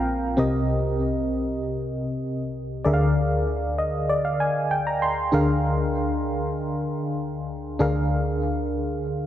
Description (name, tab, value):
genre	pop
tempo	97 BPM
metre	4/4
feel	straight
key	unclear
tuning	A4 = 441 Hz
part	FM electric piano with tremolo	solo	0.0-9.3 s	Bb1 to C6	-22 LUFS	equal	none
room	moderate lush hall reverb, RT60 3.0 s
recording	dark, warm production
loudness	-22 LUFS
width	side -11 dB against mid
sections	0.4-9.3 A section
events	FM electric piano fill 0.0-0.4, 3.5-5.3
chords	0.4 Cm7; 2.9 Bb7/D